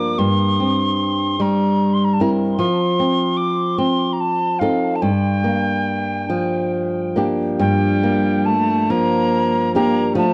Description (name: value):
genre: celtic folk, Celtic slow air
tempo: 46-51 BPM (dotted quarters)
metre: 6/8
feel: rubato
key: G minor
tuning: A4 = 445 Hz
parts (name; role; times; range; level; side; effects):
- reedy wooden whistle; melody; 0.0-10.3 s; F5 to D6; -24 LUFS; equal; tape echo
- flamenco guitar; accompaniment; 0.0-10.3 s; G2 to Bb4; -20 LUFS; equal; none
- clear viola; second line; 7.6-10.3 s; G3 to Bb3; -23 LUFS; equal; none
room: little or no reverb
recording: dry, close 1970s-style studio recording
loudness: -18 LUFS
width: mono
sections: 0.0-7.6 A section; 7.6-10.3 A section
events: none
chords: 0.2 C7/G; 2.6 F7; 5.0 Gm7